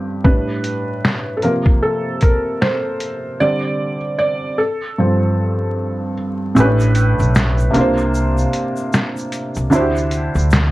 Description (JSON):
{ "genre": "lo-fi hip hop", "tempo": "76 BPM", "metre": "4/4", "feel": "swing 60% on 16ths", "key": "A phrygian", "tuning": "A4 = 440 Hz", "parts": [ { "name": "felt-muted upright piano", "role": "accompaniment", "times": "0.0-10.7 s", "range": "G2 to D5", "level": "-17 LUFS", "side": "right 1 dB", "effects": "cassette tape, low-pass filter" }, { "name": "trip hop sampler-style drum kit", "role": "drums", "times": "0.2-10.7 s", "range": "hi-hat, kick drum, shaker, snare drum", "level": "-16 LUFS", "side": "equal", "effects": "vintage 12-bit sampler grit" }, { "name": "upright bass", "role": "bass", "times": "6.6-10.7 s", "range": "A1 to D2", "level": "-17 LUFS", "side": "equal", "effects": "none" }, { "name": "egg shaker", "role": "percussion", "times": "6.6-10.7 s", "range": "none", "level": "-41 LUFS", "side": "left 6 dB", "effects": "none" } ], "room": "moderate small room reverb, RT60 0.5 s", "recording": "vinyl crackle", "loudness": "-15 LUFS", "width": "side -18 dB against mid", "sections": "0.0-6.6 A section; 6.6-10.7 B section", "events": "felt piano solo 0.0-6.6; drums muted 3.4-6.6; kick muted 6.6-10.7", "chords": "0.2 A9sus4; 1.4 C7sus4; 3.4 D7sus4; 4.6 G9sus4; 6.6 A9sus4; 7.7 C9sus4; 9.7 D9sus4" }